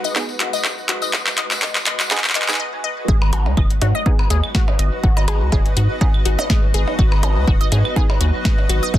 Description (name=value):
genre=minimal techno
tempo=123 BPM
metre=4/4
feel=swing 55% on 16ths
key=G# minor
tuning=A4 = 441 Hz
part: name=resonant blip pluck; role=riff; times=0.0-9.0 s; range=F#4 to D#5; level=-26 LUFS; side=left 4 dB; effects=phaser, sidechain pumping, dub echo
part: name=tambourine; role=percussion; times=0.0-2.6 s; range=none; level=-30 LUFS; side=left 3 dB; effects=none
part: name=granular cloud pad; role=texture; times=0.0-9.0 s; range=G#3 to D#5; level=-27 LUFS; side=equal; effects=built-in reverb, sidechain pumping
part: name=filtered dub chord stab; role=stabs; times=0.2-8.0 s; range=B3 to G#4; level=-29 LUFS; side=right 4 dB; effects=chorus, tape echo
part: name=booming analog drum machine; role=drums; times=0.2-8.8 s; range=handclaps, hi-hat, snare drum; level=-20 LUFS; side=equal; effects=none
part: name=electronic kick drum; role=drums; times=0.2-9.0 s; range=none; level=-18 LUFS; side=equal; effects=high-pass filter on kick
part: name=rubbery square bass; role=bass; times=3.1-9.0 s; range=F#1 to G#2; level=-18 LUFS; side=equal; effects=sidechain pumping
part: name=percussion blips and claves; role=percussion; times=3.2-9.0 s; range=none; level=-27 LUFS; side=right 1 dB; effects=tape echo
room=light reverb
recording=dense, heavily limited modern master, high-pass filter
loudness=-15 LUFS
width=side -13 dB against mid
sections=0.0-3.1 A section; 3.1-9.0 B section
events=build-up 0.0-3.1; drum fill 0.0-2.6; filter sweep on synth arpeggio sound 0.0-3.1; filter sweep on synth stab 0.0-3.1; break 2.6-3.1; drop 3.1-9.0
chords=0.0 G#m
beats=0.16 0.65 | 1.13 1.62 2.11 2.60 | 3.08 3.57 4.06 4.55 | 5.04 5.52 6.01 6.50 | 6.99 7.47 7.96 8.45 | 8.94